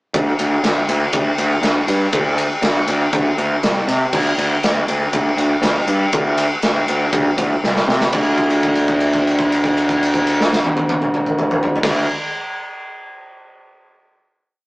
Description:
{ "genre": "heavy metal", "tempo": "120 BPM", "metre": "4/4", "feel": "straight", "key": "unclear", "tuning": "A4 = 439 Hz", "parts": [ { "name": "fuzz picked electric bass", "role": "bass", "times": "0.1-12.0 s", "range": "C2 to C3", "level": "-17 LUFS", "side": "equal", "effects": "overdrive" }, { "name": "big rock drum kit", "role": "drums", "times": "0.1-12.0 s", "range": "crash cymbal, kick drum, ride cymbal, snare drum, toms", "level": "-18 LUFS", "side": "equal", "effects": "none" } ], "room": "light reverb", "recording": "rough rehearsal-room recording, tube saturation, small speaker sound", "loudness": "-15 LUFS", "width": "side -24 dB against mid", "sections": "0.1-8.1 riff; 8.1-12.1 final note", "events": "drum fill 7.6-8.1; held note 8.1-11.8", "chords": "none" }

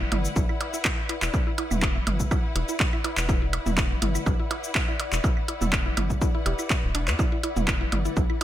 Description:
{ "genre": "minimal techno", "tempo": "123 BPM", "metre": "4/4", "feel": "swing 54% on 16ths", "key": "E minor", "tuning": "A4 = 439 Hz", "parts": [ { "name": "mallet-like synth pluck", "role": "riff", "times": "0.0-8.4 s", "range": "D4 to E5", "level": "-34 LUFS", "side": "equal", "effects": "chorus, phaser, sidechain pumping, ping-pong delay" }, { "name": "rubbery square bass", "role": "bass", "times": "0.0-8.2 s", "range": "D1 to E2", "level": "-28 LUFS", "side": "equal", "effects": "sidechain pumping" }, { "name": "bubbling stepped-filter texture", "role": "texture", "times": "0.0-8.4 s", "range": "D5", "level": "-40 LUFS", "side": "left 4 dB", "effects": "chorus, built-in reverb, sidechain pumping" }, { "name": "rich studio string section", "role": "texture", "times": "0.0-8.4 s", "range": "E4 to F#5", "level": "-36 LUFS", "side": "left 2 dB", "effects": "sidechain pumping" }, { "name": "punchy analog drum machine", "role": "drums", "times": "0.1-8.4 s", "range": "handclaps, hi-hat, shaker", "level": "-29 LUFS", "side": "equal", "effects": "gated reverb" }, { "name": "electronic toms, percussion blips and claves", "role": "percussion", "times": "0.1-8.4 s", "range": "none", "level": "-32 LUFS", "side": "right 3 dB", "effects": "gated reverb, ping-pong delay" }, { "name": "electronic kick drum", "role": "drums", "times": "0.4-8.3 s", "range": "none", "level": "-25 LUFS", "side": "equal", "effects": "none" } ], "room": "light reverb, digital ambience", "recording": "bright 1980s-style digital production", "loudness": "-23 LUFS", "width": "side -12 dB against mid", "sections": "0.0-8.4 A section", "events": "none", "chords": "0.0 E7(no3)" }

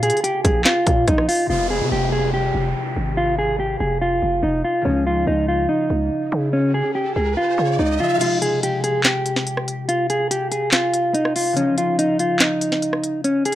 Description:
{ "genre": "hip hop, trap", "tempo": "143 BPM", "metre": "4/4", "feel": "half-time", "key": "F minor", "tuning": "A4 = 438 Hz", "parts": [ { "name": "mellow electric guitar", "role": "melody", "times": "0.0-13.6 s", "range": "Db4 to Ab4", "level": "-19 LUFS", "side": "equal", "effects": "spring reverb, low-pass filter, tape echo" }, { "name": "concert harp", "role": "accompaniment", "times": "0.0-13.6 s", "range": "C3 to F4", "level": "-28 LUFS", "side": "left 4 dB", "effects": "low-pass filter" }, { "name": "growling 808-style bass", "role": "bass", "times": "0.0-8.0 s", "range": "F1 to Db3", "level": "-23 LUFS", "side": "equal", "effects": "none" }, { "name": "trap drum kit", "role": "drums", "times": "0.0-1.4, 8.2-13.6 s", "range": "crash cymbal, handclaps, hi-hat, kick drum, rim click, snare drum", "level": "-20 LUFS", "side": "equal", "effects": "none" }, { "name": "downlifter and riser", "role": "sound effects", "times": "1.5-8.2 s", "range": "none", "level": "-29 LUFS", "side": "right 2 dB", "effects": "none" } ], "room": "little or no reverb", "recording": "dry, gritty hardware recording", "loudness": "-17 LUFS", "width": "side -13 dB against mid", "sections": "0.0-1.5 A section; 1.5-8.2 B section; 8.2-13.6 C section", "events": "riser 6.4-8.2; kick muted 8.2-13.6", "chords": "0.0 Bbm; 1.5 Fm; 4.9 Dbadd9; 8.2 Fm; 11.6 Dbadd9" }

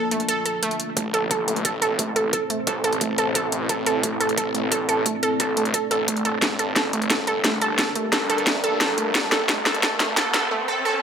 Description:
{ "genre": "dark technical drum and bass", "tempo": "176 BPM", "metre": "4/4", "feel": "straight", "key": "A phrygian", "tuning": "A4 = 440 Hz", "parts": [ { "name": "deep dark ambient pad", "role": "sustained chords", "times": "0.0-10.5 s", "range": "G3 to D5", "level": "-30 LUFS", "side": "left 1 dB", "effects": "chorus, built-in reverb, sidechain pumping" }, { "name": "wide unison pluck", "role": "arpeggios", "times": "0.0-11.0 s", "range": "A3 to A4", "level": "-23 LUFS", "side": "right 2 dB", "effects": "sidechain pumping, dub echo" }, { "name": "drum and bass drum kit", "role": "drums", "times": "0.1-10.4 s", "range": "hi-hat, snare drum", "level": "-23 LUFS", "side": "equal", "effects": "overdrive" }, { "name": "snarling distorted saw bass", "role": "bass", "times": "1.0-10.5 s", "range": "G1 to G2", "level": "-28 LUFS", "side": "equal", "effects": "tube saturation, sidechain pumping, high-pass filter" }, { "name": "electronic kick drum", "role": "drums", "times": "1.0-10.2 s", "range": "none", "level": "-33 LUFS", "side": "equal", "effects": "overdrive, high-pass filter on kick, high-pass filter on room" }, { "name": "riser", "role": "sound effects", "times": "7.7-11.0 s", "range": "none", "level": "-32 LUFS", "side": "equal", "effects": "none" } ], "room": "moderate digital room reverb, RT60 1.2 s, digital ambience", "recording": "high-pass filter", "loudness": "-20 LUFS", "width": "side -7 dB against mid", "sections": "1.0-11.0 A section", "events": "build-up 1.0-11.0; filter sweep on synth arpeggio sound 1.0-11.0; drum fill 6.4-10.5; riser 7.7-11.0; break 10.5-11.0", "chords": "0.0 Gm (rootless); 1.0 Am; 6.4 Gm" }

